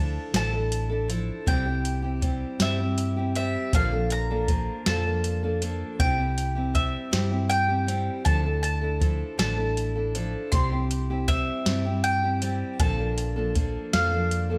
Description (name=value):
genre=indie folk with a building arrangement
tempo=53 BPM (dotted quarters)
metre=6/8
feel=straight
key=unclear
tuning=A4 = 438 Hz
part: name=bowl-back mandolin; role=melody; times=0.0-14.6 s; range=E5 to C6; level=-32 LUFS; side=equal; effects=none
part: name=picked steel-string acoustic guitar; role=accompaniment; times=0.0-14.6 s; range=Bb2 to A4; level=-32 LUFS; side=equal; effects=none
part: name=hollow-body short-scale fingered electric bass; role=bass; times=0.0-14.6 s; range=A1 to G2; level=-30 LUFS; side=equal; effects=none
part: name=soft vintage rhythm box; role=drums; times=0.3-14.5 s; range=hi-hat, kick drum, snare drum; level=-29 LUFS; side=equal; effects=overdrive
room=light reverb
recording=none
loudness=-26 LUFS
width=mono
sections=0.0-14.6 A section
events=none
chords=0.0 Dmadd9; 1.5 C; 3.7 Bbmaj7; 6.0 C; 8.3 Dmadd9; 10.5 C; 12.8 Bbmaj7